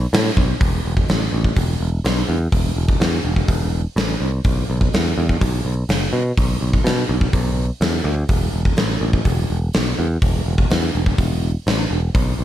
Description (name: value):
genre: rock, shoegaze and dream pop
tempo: 125 BPM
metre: 4/4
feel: straight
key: unclear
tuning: A4 = 440 Hz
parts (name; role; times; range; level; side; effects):
- picked electric bass; bass; 0.0-12.4 s; E1 to B2; -20 LUFS; equal; none
- gated 80s drum kit; drums; 0.1-12.3 s; hi-hat, kick drum, snare drum; -19 LUFS; equal; none
room: little or no reverb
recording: none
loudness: -16 LUFS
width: side -12 dB against mid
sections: 0.6-12.4 A section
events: none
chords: none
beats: 0.13 | 0.61 1.09 1.57 2.05 | 2.53 3.01 3.49 3.97 | 4.45 4.93 5.41 5.89 | 6.38 6.86 7.34 7.82 | 8.30 8.78 9.26 9.74 | 10.22 10.70 11.18 11.66 | 12.14